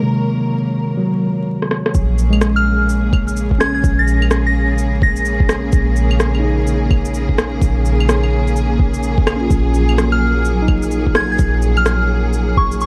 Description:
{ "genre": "future garage", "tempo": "127 BPM", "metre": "4/4", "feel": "swing 62% on 16ths", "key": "Bb minor", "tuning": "A4 = 440 Hz", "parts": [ { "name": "tine electric piano", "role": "accompaniment", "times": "0.0-12.9 s", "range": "C3 to Ab4", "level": "-24 LUFS", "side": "equal", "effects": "overdrive, sidechain pumping, analog delay" }, { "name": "clear symphonic string section", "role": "sustained chords", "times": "0.0-12.9 s", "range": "Bb2 to Bb4", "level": "-24 LUFS", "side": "equal", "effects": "sidechain pumping" }, { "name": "backwards swelling texture", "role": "texture", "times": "0.0-1.5 s", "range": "Db5", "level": "-42 LUFS", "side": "equal", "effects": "none" }, { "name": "electronic rim click, shaker and claves", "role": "drums", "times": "1.6-12.9 s", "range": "none", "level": "-23 LUFS", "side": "equal", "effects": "overdrive, low-pass filter on snare, low-pass filter on perc, low-pass filter on room" }, { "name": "soft 808-style bass", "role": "bass", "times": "1.9-12.9 s", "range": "Bb1", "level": "-20 LUFS", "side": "equal", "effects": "sidechain pumping" }, { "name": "electronic kick drum", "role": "drums", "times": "1.9-12.7 s", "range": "none", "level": "-18 LUFS", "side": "equal", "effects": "overdrive" }, { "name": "soft synth bell", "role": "melody", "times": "2.6-5.5, 10.1-12.9 s", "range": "Db6 to Bb6", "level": "-23 LUFS", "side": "equal", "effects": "chorus, tape echo" } ], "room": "light reverb, digital ambience", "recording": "vinyl crackle", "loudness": "-16 LUFS", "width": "mono", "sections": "0.0-1.9 A section; 1.9-12.9 B section", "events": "drum fill 1.6-1.9", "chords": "0.0 Gbadd9/Bb; 1.9 Bbm7; 9.5 Gbadd9/Bb", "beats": "| 0.06 0.53 1.00 1.48 | 1.95 2.42 2.89 3.37 | 3.84 4.31 4.78 5.25 | 5.73 6.20 6.67 7.14 | 7.62 8.09 8.56 9.03 | 9.51 9.98 10.45 10.92 | 11.40 11.87 12.34 12.81" }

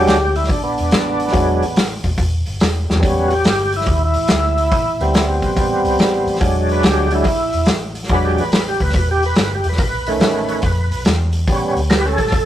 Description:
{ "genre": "blues rock power trio and southern rock", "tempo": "142 BPM", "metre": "4/4", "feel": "swing 67% on 8ths", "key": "unclear", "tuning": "A4 = 440 Hz", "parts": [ { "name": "overdriven tonewheel organ", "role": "sustained chords", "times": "0.0-12.5 s", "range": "D#3 to B4", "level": "-17 LUFS", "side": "right 1 dB", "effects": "slow rotary speaker, chorus vibrato" }, { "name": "vintage muted fingered electric bass", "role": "bass", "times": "0.0-12.5 s", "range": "E1 to F2", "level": "-21 LUFS", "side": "equal", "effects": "none" }, { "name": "vintage drum kit", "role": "drums", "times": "0.1-12.5 s", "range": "hi-hat, kick drum, snare drum, toms", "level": "-18 LUFS", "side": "equal", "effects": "none" } ], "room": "moderate stone room reverb, RT60 1.1 s", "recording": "rough rehearsal-room recording, tube saturation", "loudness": "-14 LUFS", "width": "side -12 dB against mid", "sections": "0.0-12.5 A section", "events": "tonewheel organ solo 0.0-12.5; drum fill 2.8", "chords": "0.0 E7; 3.0 A7; 4.7 Am7; 6.4 E7; 9.8 B7; 11.5 A7", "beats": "0.08 0.50 0.93 | 1.35 1.77 2.19 2.62 | 3.04 3.46 3.88 4.31 | 4.73 5.15 5.58 6.00 | 6.42 6.84 7.27 7.69 | 8.11 8.54 8.96 9.38 | 9.80 10.22 10.65 11.07 | 11.49 11.91 12.34" }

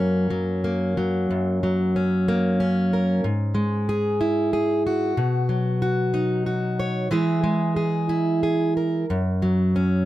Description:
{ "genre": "folk, solo fingerstyle acoustic guitar", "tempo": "92 BPM", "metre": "3/4", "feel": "straight", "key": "F# mixolydian", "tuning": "A4 = 440 Hz", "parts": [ { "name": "fingerpicked plugged-in steel-string acoustic guitar", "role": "solo", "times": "0.0-10.1 s", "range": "F#2 to C#5", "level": "-20 LUFS", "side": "equal", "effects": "none" } ], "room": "light reverb", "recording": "none", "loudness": "-20 LUFS", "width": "side -15 dB against mid", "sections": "0.0-1.3 A section; 1.3-10.1 B section", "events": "none", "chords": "0.0 F#; 3.2 E/G#; 5.2 B; 7.1 E; 9.1 F#5", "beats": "0.63 | 1.29 1.94 2.59 | 3.23 3.88 4.52 | 5.17 5.81 6.46 | 7.11 7.76 8.42 | 9.08 9.74" }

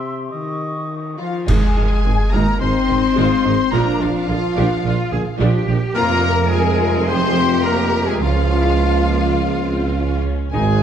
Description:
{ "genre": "cinematic, heroic adventure film score", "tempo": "106 BPM", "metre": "4/4", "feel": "straight", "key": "Ab major", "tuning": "A4 = 442 Hz", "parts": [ { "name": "bright clarinet", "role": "second line", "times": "0.0-10.8 s", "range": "F4 to C5", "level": "-27 LUFS", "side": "left 1 dB", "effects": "none" }, { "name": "flute section", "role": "second line", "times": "0.0-10.8 s", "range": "F5 to Db6", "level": "-26 LUFS", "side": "left 4 dB", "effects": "none" }, { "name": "warm oboe", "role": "second line", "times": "0.0-1.2 s", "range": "Eb5 to E5", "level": "-29 LUFS", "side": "right 1 dB", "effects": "none" }, { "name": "warm French horn section", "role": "sustained chords", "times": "0.0-10.8 s", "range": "C3 to C4", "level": "-22 LUFS", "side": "left 5 dB", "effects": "none" }, { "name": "warm symphonic violin section", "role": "melody", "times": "1.2-10.8 s", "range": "F5 to C6", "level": "-27 LUFS", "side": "left 4 dB", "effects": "none" }, { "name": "warm symphonic violin section", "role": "second line", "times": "1.2-10.8 s", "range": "F4 to C5", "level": "-31 LUFS", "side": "left 2 dB", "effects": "none" }, { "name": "rich symphonic viola section", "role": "accompaniment", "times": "1.5-10.8 s", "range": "D3 to Eb4", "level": "-25 LUFS", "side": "right 1 dB", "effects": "none" }, { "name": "clear symphonic double bass section", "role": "bass", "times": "1.5-10.8 s", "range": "Ab1 to F2", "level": "-20 LUFS", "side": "right 4 dB", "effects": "none" }, { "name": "clear tuba", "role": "bass", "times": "1.5-10.8 s", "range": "F1 to Db2", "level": "-24 LUFS", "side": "right 4 dB", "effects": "none" }, { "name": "clash cymbals and concert bass drum", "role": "percussion", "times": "1.5-2.6 s", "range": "none", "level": "-20 LUFS", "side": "equal", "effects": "none" }, { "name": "rich symphonic cello section", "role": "bass", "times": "2.6-10.6 s", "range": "D4 to Bb4", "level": "-26 LUFS", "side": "right 2 dB", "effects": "none" } ], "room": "moderate scoring stage reverb, RT60 1.9 s", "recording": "dark, warm production", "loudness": "-15 LUFS", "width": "side -9 dB against mid", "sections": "0.0-1.5 A section; 1.5-10.8 B section", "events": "band accent 1.5-2.0", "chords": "0.3 Eb7; 1.5 Ab; 3.7 Bb; 6.0 Fm; 8.2 Db", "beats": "0.31 0.90 | 1.48 2.05 2.61 3.17 | 3.73 4.29 4.85 5.41 | 5.96 6.52 7.08 7.65 | 8.22 8.80 9.38 9.96 | 10.53" }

